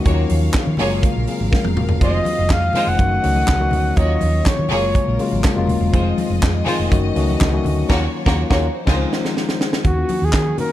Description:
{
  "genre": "disco",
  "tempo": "123 BPM",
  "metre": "4/4",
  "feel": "straight",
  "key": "unclear",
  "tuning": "A4 = 441 Hz",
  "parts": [
    { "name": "clear studio violin section", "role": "second line", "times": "0.0-9.0 s", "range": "Ab3 to Db5", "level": "-25 LUFS", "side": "right 1 dB", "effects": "none" },
    { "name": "tine electric piano", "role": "accompaniment", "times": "0.0-10.7 s", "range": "Db3 to Bb4", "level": "-22 LUFS", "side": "left 4 dB", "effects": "none" },
    { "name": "clear studio string section", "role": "sustained chords", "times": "0.0-10.7 s", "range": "Eb3 to F5", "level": "-30 LUFS", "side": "left 1 dB", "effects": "none" },
    { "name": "hollow-body short-scale fingered electric bass", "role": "bass", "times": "0.1-10.5 s", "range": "Eb1 to Eb3", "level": "-20 LUFS", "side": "right 1 dB", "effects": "none" },
    { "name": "tight funk drum kit", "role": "drums", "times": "0.1-10.7 s", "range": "crash cymbal, handclaps, hi-hat, kick drum, snare drum, toms", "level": "-20 LUFS", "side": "right 1 dB", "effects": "none" },
    { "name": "congas", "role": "percussion", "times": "0.1-10.7 s", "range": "none", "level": "-29 LUFS", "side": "left 3 dB", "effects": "none" },
    { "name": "mellow flugelhorn", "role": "melody", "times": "2.0-5.4, 9.9-10.7 s", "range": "Gb4 to Gb5", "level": "-21 LUFS", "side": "equal", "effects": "none" }
  ],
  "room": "light reverb",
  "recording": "dark, warm production",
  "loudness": "-15 LUFS",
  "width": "side -13 dB against mid",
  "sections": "0.0-9.8 A section",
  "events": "drum fill 1.5-2.0, 8.9-9.8; band accent 7.9-9.8",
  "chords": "0.1 Ebm9; 0.8 Gbmaj9; 2.0 Fm7; 3.0 Gbm6; 4.0 Ebm9; 4.7 Gbmaj9; 5.9 Fm7; 6.9 Gbm6; 7.9 Ebm9; 8.6 Dbmaj9; 9.8 Ebm7"
}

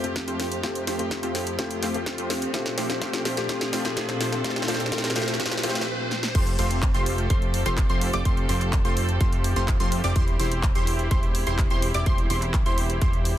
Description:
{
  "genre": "EDM, festival progressive house",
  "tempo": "126 BPM",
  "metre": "4/4",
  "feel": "straight",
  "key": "F major",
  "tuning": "A4 = 443 Hz",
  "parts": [
    { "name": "warm baby grand piano", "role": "accompaniment", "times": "0.0-5.9 s", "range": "A3 to G4", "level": "-31 LUFS", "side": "left 4 dB", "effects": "sidechain pumping, dub echo" },
    { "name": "warm studio string section", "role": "sustained chords", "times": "0.0-13.4 s", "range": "F2 to A4", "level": "-34 LUFS", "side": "equal", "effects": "sidechain pumping, low-pass filter" },
    { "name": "supersaw stab", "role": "riff", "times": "0.0-13.3 s", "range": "A3 to D5", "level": "-30 LUFS", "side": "equal", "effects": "sidechain pumping, low-pass filter, dub echo" },
    { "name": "big-room dance drum kit", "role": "drums", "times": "0.0-13.3 s", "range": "crash cymbal, handclaps, hi-hat, snare drum", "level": "-30 LUFS", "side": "equal", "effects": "none" },
    { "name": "riser", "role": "sound effects", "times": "0.1-6.3 s", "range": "none", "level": "-36 LUFS", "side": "equal", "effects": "none" },
    { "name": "electronic kick drum", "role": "drums", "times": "0.2-13.1 s", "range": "none", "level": "-24 LUFS", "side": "equal", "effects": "high-pass filter on kick" },
    { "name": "fat analog bass", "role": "bass", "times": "6.3-13.3 s", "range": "E1 to F2", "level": "-27 LUFS", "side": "equal", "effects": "sidechain pumping" },
    { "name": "wide unison pluck", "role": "arpeggios", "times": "6.4-13.3 s", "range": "C6 to D6", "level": "-32 LUFS", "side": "right 1 dB", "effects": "cassette tape, sidechain pumping, dub echo" }
  ],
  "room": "light reverb, digital ambience",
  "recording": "dense, heavily limited modern master",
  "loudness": "-22 LUFS",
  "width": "side -12 dB against mid",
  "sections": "0.0-6.3 A section; 6.3-13.4 B section",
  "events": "build-up 0.0-6.3; drum fill 0.0-5.9, 6.1; filter sweep on supersaw synth 0.0-6.3; filter sweep on string section 0.0-6.3; riser 0.1-6.3; break 5.9-6.3; drop 6.3-13.4",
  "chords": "0.0 Fadd9; 2.5 Bbadd9; 6.3 Fadd9; 10.2 C/E"
}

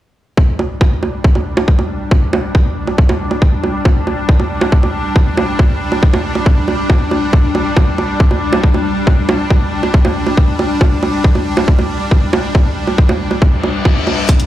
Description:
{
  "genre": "psychedelic trance",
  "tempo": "138 BPM",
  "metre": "4/4",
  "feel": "straight",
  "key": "unclear",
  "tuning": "A4 = 441 Hz",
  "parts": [
    { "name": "evolving wavetable pad", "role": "sustained chords", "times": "0.5-14.5 s", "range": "G3 to D4", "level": "-19 LUFS", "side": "left 1 dB", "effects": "ensemble chorus, built-in reverb, sidechain pumping" },
    { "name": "electronic kick drum", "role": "drums", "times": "0.4-14.4 s", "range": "none", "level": "-10 LUFS", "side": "equal", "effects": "overdrive" },
    { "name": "electronic bongos and hi-hat", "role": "drums", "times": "0.6-14.5 s", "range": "none", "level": "-18 LUFS", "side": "right 3 dB", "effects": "overdrive" },
    { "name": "reverse cymbal", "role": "sound effects", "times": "13.5-14.3 s", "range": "none", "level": "-20 LUFS", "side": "left 4 dB", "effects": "none" }
  ],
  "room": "light reverb",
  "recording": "played on a big sound system in a bare room, large studio reverb",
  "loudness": "-11 LUFS",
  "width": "side -13 dB against mid",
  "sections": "0.4-14.5 A section",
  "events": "reverse cymbal 13.5-14.3",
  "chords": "0.4 G5"
}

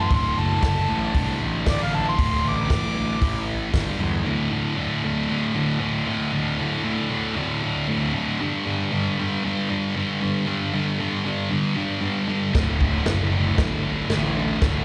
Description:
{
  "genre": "garage rock duo or trio",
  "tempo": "116 BPM",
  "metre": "4/4",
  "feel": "straight",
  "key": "unclear",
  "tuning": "A4 = 441 Hz",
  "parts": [
    { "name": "clear harmonica", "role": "melody", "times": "0.0-3.5 s", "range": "D5 to D6", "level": "-29 LUFS", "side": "equal", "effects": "overdrive, slapback echo, tape echo" },
    { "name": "thick fuzz guitar", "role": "riff", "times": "0.0-14.8 s", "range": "D2 to A3", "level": "-25 LUFS", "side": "equal", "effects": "distortion, slapback echo" },
    { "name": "fuzz picked electric bass", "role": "bass", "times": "0.0-4.2, 12.5-14.8 s", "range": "D1 to E2", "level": "-29 LUFS", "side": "equal", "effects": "overdrive" },
    { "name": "vintage drum kit", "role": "drums", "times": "0.1-3.9, 12.5-14.7 s", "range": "crash cymbal, hi-hat, kick drum, snare drum", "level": "-27 LUFS", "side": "equal", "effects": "none" }
  ],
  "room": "light reverb, small room reverb",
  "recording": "live gig heard through the venue's PA, club reverb",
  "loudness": "-23 LUFS",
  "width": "mono",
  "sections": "0.0-4.3 A section; 4.3-14.8 B section",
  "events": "harmonica solo 0.0-4.3",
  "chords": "0.1 D; 3.2 A5; 3.7 G5; 4.3 D5; 8.4 G5; 12.6 D"
}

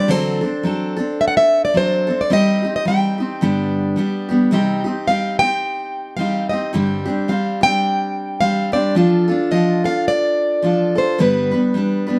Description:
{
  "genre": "acoustic folk duo or small band",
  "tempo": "108 BPM",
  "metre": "4/4",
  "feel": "swing 59% on 8ths",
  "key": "C harmonic minor",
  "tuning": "A4 = 441 Hz",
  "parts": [
    { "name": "picked plugged-in steel-string acoustic guitar", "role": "melody", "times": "0.0-12.2 s", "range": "B4 to G5", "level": "-21 LUFS", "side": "equal", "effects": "none" },
    { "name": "picked steel-string acoustic guitar", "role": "accompaniment", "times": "0.0-12.2 s", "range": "G2 to B4", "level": "-20 LUFS", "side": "equal", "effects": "none" }
  ],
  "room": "moderate small room reverb, RT60 0.5 s",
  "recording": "dark, warm production",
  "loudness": "-18 LUFS",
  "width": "mono",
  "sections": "0.0-12.2 A section",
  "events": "none",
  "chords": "0.1 D7; 2.3 Cm/G; 3.4 G; 4.5 Cm; 6.7 Gsus4; 9.0 Dm/F; 11.2 G"
}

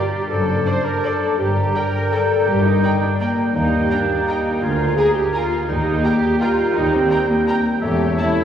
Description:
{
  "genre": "classical, orchestral ballroom waltz",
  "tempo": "168 BPM",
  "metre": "3/4",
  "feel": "uneven beats, rubato",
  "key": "G minor",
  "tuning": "A4 = 440 Hz",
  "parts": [
    { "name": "muted studio violin section", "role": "melody", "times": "0.0-8.3 s", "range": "D5 to Bb5", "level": "-33 LUFS", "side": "equal", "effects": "none" },
    { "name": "clear oboe", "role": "second line", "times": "0.0-8.4 s", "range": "D5 to Ab5", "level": "-27 LUFS", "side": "right 4 dB", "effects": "none" },
    { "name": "mellow large flute ensemble", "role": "second line", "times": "0.0-8.4 s", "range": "A5 to Bb5", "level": "-29 LUFS", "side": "equal", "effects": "none" },
    { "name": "muted symphonic violin section", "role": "second line", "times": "0.0-8.3 s", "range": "Bb4 to Ab5", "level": "-35 LUFS", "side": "equal", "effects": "none" },
    { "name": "warm clarinet", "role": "second line", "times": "0.0-8.4 s", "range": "Bb4 to C#5", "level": "-30 LUFS", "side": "right 1 dB", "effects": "none" },
    { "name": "mellow bassoon", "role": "accompaniment", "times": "0.0-8.4 s", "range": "G3 to D4", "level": "-28 LUFS", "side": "right 2 dB", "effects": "none" },
    { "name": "muted symphonic viola section", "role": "accompaniment", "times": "0.0-8.4 s", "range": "Bb3 to C5", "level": "-22 LUFS", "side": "left 1 dB", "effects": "none" },
    { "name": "mellow French horn section", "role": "sustained chords", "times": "0.0-8.4 s", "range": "Bb3 to C5", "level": "-25 LUFS", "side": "right 1 dB", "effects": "none" },
    { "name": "muted symphonic cello section", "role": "bass", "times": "0.3-8.1 s", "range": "D2 to G2", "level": "-23 LUFS", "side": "left 2 dB", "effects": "none" },
    { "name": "muted symphonic double bass section", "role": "bass", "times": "0.3-8.1 s", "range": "E1 to Eb2", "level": "-25 LUFS", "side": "equal", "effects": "none" }
  ],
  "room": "wet cathedral reverb, RT60 4.6 s",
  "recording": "recorded in a church or concert hall, vinyl crackle, studio reverb",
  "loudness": "-16 LUFS",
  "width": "side -9 dB against mid",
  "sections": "0.0-8.4 A section",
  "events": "none",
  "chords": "0.3 D7/F#; 1.4 Gm; 3.6 Eb; 4.6 Bb7/D; 5.7 Eb; 7.8 A7/E"
}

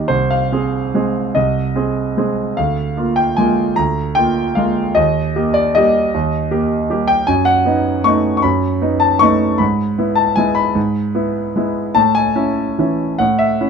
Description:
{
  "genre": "classical, piano waltz",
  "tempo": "134-164 BPM",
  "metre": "3/4",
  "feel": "rubato",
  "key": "Eb major, E major from 7.3 s",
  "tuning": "A4 = 440 Hz",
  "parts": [
    { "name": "clear grand piano", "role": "solo", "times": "0.0-13.7 s", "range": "C2 to C#6", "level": "-14 LUFS", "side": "equal", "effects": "none" }
  ],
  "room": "light reverb",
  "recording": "dark, warm production",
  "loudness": "-14 LUFS",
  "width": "side -6 dB against mid",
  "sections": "0.0-13.7 A section",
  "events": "none",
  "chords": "0.1 Ab/C; 2.6 Bb7/D; 5.0 Eb; 7.3 B7/F#; 9.6 E/G#; 12.0 A"
}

